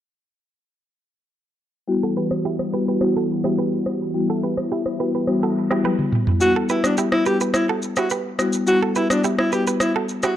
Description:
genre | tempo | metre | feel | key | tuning
afrobeats | 106 BPM | 4/4 | straight | E minor | A4 = 441 Hz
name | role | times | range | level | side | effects
marimba with soft mallets | accompaniment | 1.9-9.7 s | G3 to F#4 | -22 LUFS | left 3 dB | none
warm analog pad | sustained chords | 1.9-6.4 s | E3 to F#4 | -27 LUFS | right 1 dB | chorus
direct-recorded clean electric guitar | riff | 2.0-10.3 s | E4 to B4 | -27 LUFS | right 7 dB | digital delay
afro-pop drum kit | drums | 2.3-10.4 s | rim click, shaker, toms | -25 LUFS | equal | none
breathy alto saxophone | melody | 6.4-10.4 s | D4 to G4 | -22 LUFS | equal | none
room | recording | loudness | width
light reverb, digital ambience | dark, warm production, low-pass filter | -18 LUFS | side -11 dB against mid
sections
1.9-6.4 A section; 6.4-10.4 B section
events
filter sweep 1.9-6.4; drum fill 5.8-6.4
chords
1.9 Emadd9

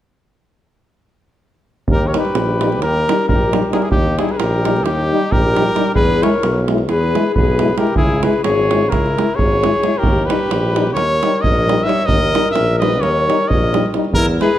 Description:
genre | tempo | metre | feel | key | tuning
balkan folk, Balkan brass band | 264 BPM (eighths) | 9/8 | straight | Eb phrygian dominant | A4 = 440 Hz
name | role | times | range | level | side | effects
clear trumpet | melody | 1.9-14.6 s | G4 to Fb5 | -19 LUFS | equal | none
clear alto saxophone | second line | 1.9-14.6 s | Eb4 to Db5 | -21 LUFS | left 4 dB | none
warm tuba | bass | 1.9-14.4 s | Ab1 to E2 | -20 LUFS | equal | none
davul | percussion | 1.9-14.6 s | none | -20 LUFS | right 2 dB | none
clear euphonium | accompaniment | 2.1-14.5 s | G3 to Ab3 | -24 LUFS | right 3 dB | none
warm French horn | accompaniment | 2.1-14.5 s | Eb4 to E4 | -24 LUFS | left 7 dB | none
room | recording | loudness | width
moderate recital hall reverb, RT60 1.8 s | dark, warm production | -13 LUFS | side -12 dB against mid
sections
1.9-14.6 A section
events
none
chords
1.9 Eb; 6.0 E; 8.0 Dbm; 10.0 Eb

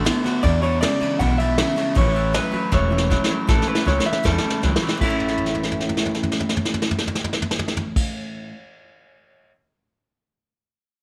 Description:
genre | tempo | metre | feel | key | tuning
rockabilly | 158 BPM | 4/4 | straight | A major | A4 = 439 Hz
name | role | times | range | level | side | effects
picked steel-string acoustic guitar | accompaniment | 0.0-8.6 s | E2 to F#4 | -32 LUFS | equal | none
electric guitar through a small old amp | riff | 0.0-8.5 s | E2 to E4 | -28 LUFS | equal | none
upright bass | bass | 0.0-8.0 s | E1 to E2 | -25 LUFS | equal | none
vintage brush drum kit | drums | 0.1-9.5 s | crash cymbal, kick drum, ride cymbal, snare drum, toms | -26 LUFS | equal | none
electric guitar through a small old amp | melody | 0.4-8.0 s | E4 to F#5 | -28 LUFS | equal | tape echo
room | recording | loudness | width
light reverb | none | -21 LUFS | mono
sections
0.0-3.5 A section; 3.5-5.0 B section; 5.0-8.1 C section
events
drum fill 2.7-3.5, 3.5-5.0, 5.2-8.0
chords
0.4 E7; 2.0 A

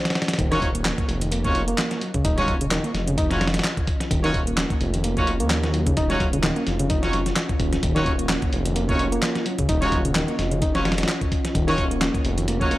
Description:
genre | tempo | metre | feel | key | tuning
breakbeat, breaks | 129 BPM | 4/4 | swing 56% on 16ths | unclear | A4 = 440 Hz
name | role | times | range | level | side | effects
dusty soul sampler-style drum kit | drums | 0.1-12.8 s | hi-hat, kick drum, snare drum | -24 LUFS | equal | none
garage drum kit | drums | 0.1-12.7 s | handclaps, hi-hat | -30 LUFS | equal | none
deep dark ambient pad | sustained chords | 2.0-12.8 s | Db4 to F5 | -31 LUFS | left 1 dB | chorus, built-in reverb, sidechain pumping
reed electric piano | riff | 0.4-12.8 s | Db3 to Eb4 | -27 LUFS | equal | tape echo
detuned saw bass | bass | 0.4-12.8 s | Eb1 to Eb2 | -26 LUFS | equal | none
bright horn section | stabs | 0.5-12.8 s | Db4 to Db5 | -27 LUFS | equal | vintage 12-bit sampler grit, tape echo
room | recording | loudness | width
light reverb | dry, gritty hardware recording | -20 LUFS | side -16 dB against mid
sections
0.0-12.8 A section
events
none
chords
0.0 Ebm9

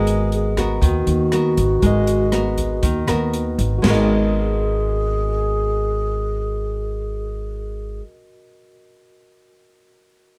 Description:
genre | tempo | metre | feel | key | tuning
bossa nova | 119 BPM | 4/4 | straight | G# minor | A4 = 440 Hz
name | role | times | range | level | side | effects
breathy mellow alto flute | melody | 0.0-8.0 s | F#4 to G#4 | -26 LUFS | equal | plate reverb
nylon-string guitar | accompaniment | 0.0-8.1 s | D#3 to A#4 | -26 LUFS | equal | none
tine electric piano | accompaniment | 0.0-10.4 s | F#4 to D#5 | -31 LUFS | equal | none
upright bass | bass | 0.0-8.0 s | G#1 to D#2 | -24 LUFS | equal | none
open jazz drum kit | drums | 0.1-4.0 s | crash cymbal, hi-hat, kick drum, rim click, snare drum | -27 LUFS | equal | none
room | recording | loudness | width
little or no reverb | none | -20 LUFS | mono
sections
0.0-3.8 A section; 3.8-7.9 B section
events
none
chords
0.0 G#m9

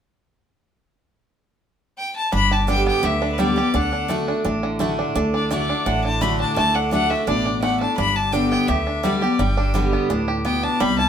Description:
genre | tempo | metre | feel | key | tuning
bluegrass | 170 BPM | 4/4 | straight | G major | A4 = 440 Hz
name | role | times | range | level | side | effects
clear fiddle | melody | 2.0-11.1 s | B4 to B5 | -23 LUFS | left 2 dB | none
picked steel-string acoustic guitar | accompaniment | 2.3-11.1 s | G2 to G4 | -23 LUFS | left 1 dB | none
bluegrass banjo | arpeggios | 2.3-11.1 s | D3 to G4 | -24 LUFS | right 3 dB | none
upright bass | bass | 2.3-11.1 s | G1 to D2 | -24 LUFS | equal | none
room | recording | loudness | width
moderate small room reverb, RT60 0.5 s | band playing live in one room | -18 LUFS | side -8 dB against mid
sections
0.9-2.3 A section; 2.3-11.1 B section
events
none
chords
0.9 N.C.; 2.3 G; 3.7 D; 8.0 G

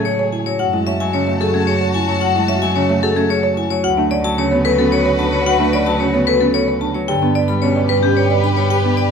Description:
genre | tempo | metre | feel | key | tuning
classical, minimalist pattern music | 111 BPM | 3/4 | straight | unclear | A4 = 443 Hz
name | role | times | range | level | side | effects
vibraphone with hard mallets | melody | 0.0-9.1 s | G4 to B5 | -19 LUFS | left 6 dB | none
Celtic harp | accompaniment | 0.0-9.1 s | B2 to C#4 | -21 LUFS | equal | none
rich chamber violin section | sustained chords | 0.0-9.1 s | F#4 to A5 | -23 LUFS | left 5 dB | none
folk marimba with medium mallets | arpeggios | 0.0-9.1 s | C#4 to D5 | -21 LUFS | right 8 dB | none
clear double bass | bass | 0.0-9.1 s | D2 to A2 | -22 LUFS | right 4 dB | none
room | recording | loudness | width
moderate recital hall reverb, RT60 1.4 s | close, detailed microphones | -14 LUFS | side -6 dB against mid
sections
0.0-9.1 A section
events
none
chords
0.0 Amaj7; 0.6 F#m7; 3.8 D6; 7.1 G

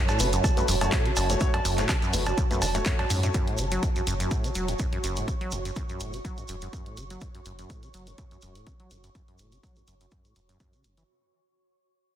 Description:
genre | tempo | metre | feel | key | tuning
acid house | 124 BPM | 4/4 | swing 54% on 16ths | F# minor | A4 = 440 Hz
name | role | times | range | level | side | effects
acid bass, saw | riff | 0.0-11.0 s | E2 to F#3 | -32 LUFS | equal | sidechain pumping, analog delay
ethereal airy pad | texture | 0.0-11.1 s | F#4 to C#6 | -34 LUFS | right 2 dB | ensemble chorus, built-in reverb, sidechain pumping
punchy analog drum machine | drums | 0.1-11.1 s | cowbell, handclaps, hi-hat | -31 LUFS | right 1 dB | none
shekere | percussion | 0.1-11.1 s | none | -37 LUFS | right 3 dB | none
warm grand piano | stabs | 0.2-3.3 s | A3 to C#5 | -33 LUFS | left 4 dB | analog delay
saturated sub bass | bass | 0.2-11.0 s | E1 to F#2 | -30 LUFS | equal | tube saturation, sidechain pumping
electronic kick drum | drums | 0.4-10.7 s | none | -28 LUFS | equal | none
room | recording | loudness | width
light reverb | dense, heavily limited modern master | -24 LUFS | side -11 dB against mid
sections
0.0-11.1 A section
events
fade-out 0.0-11.1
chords
0.0 F#m

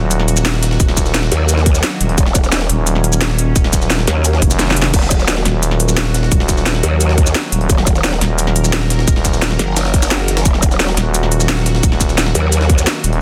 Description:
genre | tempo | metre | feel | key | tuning
dark technical drum and bass | 174 BPM | 4/4 | straight | Eb minor | A4 = 440 Hz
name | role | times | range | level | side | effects
sweeping resonant pad | sustained chords | 0.0-13.2 s | Eb3 to Bb4 | -24 LUFS | equal | chorus, sidechain pumping
growling FM bass | bass | 0.0-13.2 s | Eb1 to F1 | -18 LUFS | equal | none
breakbeat sampler-style drum kit | drums | 0.1-13.2 s | hi-hat, snare drum | -28 LUFS | equal | high-pass filter on hats, studio ambience, high-pass filter on snare
drum and bass drum kit | drums | 0.1-13.1 s | crash cymbal, hi-hat, shaker, snare drum | -21 LUFS | equal | studio ambience
electronic kick drum | drums | 0.8-12.8 s | none | -16 LUFS | equal | studio ambience
growl bass | bass | 1.3-12.9 s | Eb1 to Eb2 | -18 LUFS | equal | chorus, overdrive
room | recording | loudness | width
light reverb, digital ambience | dense, heavily limited modern master | -14 LUFS | mono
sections
0.0-13.2 A section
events
drum fill 4.6-4.9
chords
0.0 Ebm

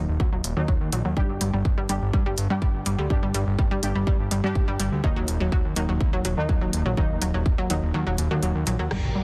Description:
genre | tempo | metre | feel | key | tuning
melodic techno | 124 BPM | 4/4 | straight | unclear | A4 = 440 Hz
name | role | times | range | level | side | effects
synth brass stab | stabs | 0.0-9.2 s | Eb3 to G4 | -34 LUFS | equal | chorus, sidechain pumping, dub echo
fat analog bass | bass | 0.0-9.2 s | Eb1 to G2 | -29 LUFS | equal | sidechain pumping
analog pluck | arpeggios | 0.2-9.2 s | Gb3 to G3 | -31 LUFS | equal | chorus, sidechain pumping, dub echo
electronic kick drum | drums | 0.2-7.6 s | none | -26 LUFS | equal | small room ambience
house drum kit | drums | 0.4-9.0 s | crash cymbal, hi-hat, rim click | -33 LUFS | equal | sidechain pumping on hats, low-pass filter on hats, small room ambience, soft clipping on snare, low-pass filter on snare, sidechain pumping on cymbals, low-pass filter on cymbals
lush unison pad | sustained chords | 8.9-9.2 s | G4 to Bb5 | -39 LUFS | equal | chorus, sidechain pumping
impact | sound effects | 8.9-9.2 s | none | -30 LUFS | equal | none
room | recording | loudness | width
light reverb | dense, heavily limited modern master | -24 LUFS | mono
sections
0.0-8.9 A section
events
filter sweep on synth arpeggio sound 0.0-8.9; kick drops out 7.9-8.9; impact 8.9-9.2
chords
0.0 Ebm; 1.2 G5; 5.0 Ebm

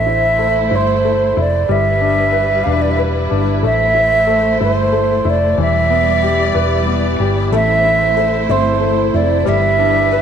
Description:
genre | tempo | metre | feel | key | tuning
pop | 62 BPM (dotted quarters) | 6/8 | straight | A minor | A4 = 440 Hz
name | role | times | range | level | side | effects
reedy concert flute | melody | 0.0-10.2 s | C5 to F5 | -15 LUFS | right 2 dB | none
clear upright piano | accompaniment | 0.0-10.2 s | E3 to B4 | -20 LUFS | left 10 dB | none
warm studio string section | sustained chords | 0.0-10.2 s | G3 to D5 | -21 LUFS | right 1 dB | none
hollow-body short-scale fingered electric bass | bass | 0.0-10.2 s | E1 to A1 | -19 LUFS | right 2 dB | none
picked steel-string acoustic guitar | arpeggios | 7.5-10.2 s | G2 to E4 | -23 LUFS | right 13 dB | none
room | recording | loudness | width
moderate plate reverb, RT60 2.8 s | 1960s-style stereo with parts hard left and right | -12 LUFS | side -8 dB against mid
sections
0.0-10.2 A section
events
none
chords
0.0 Am; 1.7 G6; 3.6 Am; 5.6 Em7; 7.5 Am; 9.5 G6

